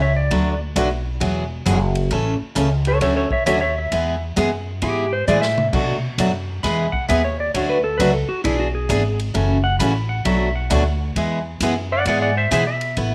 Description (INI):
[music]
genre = country, western swing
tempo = 133 BPM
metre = 4/4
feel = swing 65% on 8ths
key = unclear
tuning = A4 = 440 Hz
[part]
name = clean lap steel guitar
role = second line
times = 0.0-13.0 s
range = E4 to B5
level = -24 LUFS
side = equal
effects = none
[part]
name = upright bass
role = bass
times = 0.0-13.1 s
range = E1 to B2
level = -25 LUFS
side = equal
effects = none
[part]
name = picked steel-string acoustic guitar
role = accompaniment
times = 0.3-13.1 s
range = B2 to B4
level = -24 LUFS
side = equal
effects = none
[part]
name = swinging big-band drum kit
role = drums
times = 0.3-13.1 s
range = crash cymbal, hi-hat, kick drum, ride cymbal, snare drum, toms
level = -32 LUFS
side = equal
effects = none
[sound]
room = wet spring reverb, RT60 1.1 s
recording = none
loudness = -20 LUFS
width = mono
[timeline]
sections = 0.0-13.0 A section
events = electric slide guitar solo 0.0-13.0; drum fill 5.3-5.7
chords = 0.3 D6; 1.2 Eadd9; 2.1 A; 3.0 Dmaj7; 3.9 E; 5.7 Bm7; 6.6 E; 7.5 D; 8.4 E7; 9.3 F#m7; 10.3 Bm7; 11.2 E